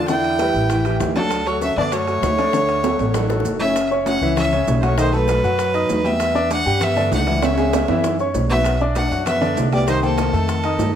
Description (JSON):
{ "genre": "Afro-Cuban jazz", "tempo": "196 BPM", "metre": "4/4", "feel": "straight", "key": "unclear", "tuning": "A4 = 440 Hz", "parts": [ { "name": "clear fiddle", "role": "melody", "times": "0.0-10.9 s", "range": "A4 to G5", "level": "-22 LUFS", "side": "right 1 dB", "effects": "none" }, { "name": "breathy trombone", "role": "second line", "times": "0.0-10.9 s", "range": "Eb3 to E4", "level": "-26 LUFS", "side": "left 2 dB", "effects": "none" }, { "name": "warm baby grand piano", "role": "accompaniment", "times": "0.0-10.9 s", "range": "C#3 to D#6", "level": "-22 LUFS", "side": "left 1 dB", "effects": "none" }, { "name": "upright bass", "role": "bass", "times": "0.0-11.0 s", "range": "F#1 to G2", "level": "-23 LUFS", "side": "equal", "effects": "none" }, { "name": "bongos", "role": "percussion", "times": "0.1-10.9 s", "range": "none", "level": "-31 LUFS", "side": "left 6 dB", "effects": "none" }, { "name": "congas", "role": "percussion", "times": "0.1-10.9 s", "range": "none", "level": "-29 LUFS", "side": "equal", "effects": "none" }, { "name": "maracas", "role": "percussion", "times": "0.1-10.9 s", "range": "none", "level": "-39 LUFS", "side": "right 5 dB", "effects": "none" }, { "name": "timbales", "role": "percussion", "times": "0.2-10.9 s", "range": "none", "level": "-27 LUFS", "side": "right 6 dB", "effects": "none" } ], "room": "moderate large studio reverb, RT60 1.2 s", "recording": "none", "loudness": "-16 LUFS", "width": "side -9 dB against mid", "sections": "0.0-3.8 A section; 3.8-11.0 B section", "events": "drum fill 2.8-3.8, 7.4-8.7", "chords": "0.1 Em7; 0.7 A5; 1.3 Dmaj7; 3.8 F#5; 5.0 B7; 6.2 Em9; 7.4 C#m; 8.0 F#5; 8.7 Bm; 9.9 Cm7" }